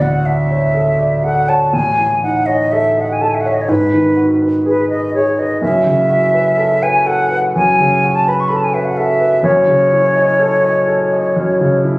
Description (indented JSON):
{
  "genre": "classical, impressionist duo for flute and grand piano",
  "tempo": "62 BPM",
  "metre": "4/4",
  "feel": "rubato",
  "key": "unclear",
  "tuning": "A4 = 438 Hz",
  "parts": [
    { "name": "concert flute", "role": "melody", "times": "0.0-11.8 s", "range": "B4 to C#6", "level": "-14 LUFS", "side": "equal", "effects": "none" },
    { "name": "warm grand piano", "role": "accompaniment", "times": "0.0-12.0 s", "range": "F#1 to D#5", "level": "-15 LUFS", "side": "equal", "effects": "none" }
  ],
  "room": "wet recital hall reverb, RT60 1.6 s",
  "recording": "recorded on a phone in the room, studio ambience, compression",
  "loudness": "-11 LUFS",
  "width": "side -22 dB against mid",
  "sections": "0.0-12.0 A section",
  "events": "none",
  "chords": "0.0 D5; 1.7 A; 3.7 G#m7; 5.6 F#m7; 9.5 A/F#"
}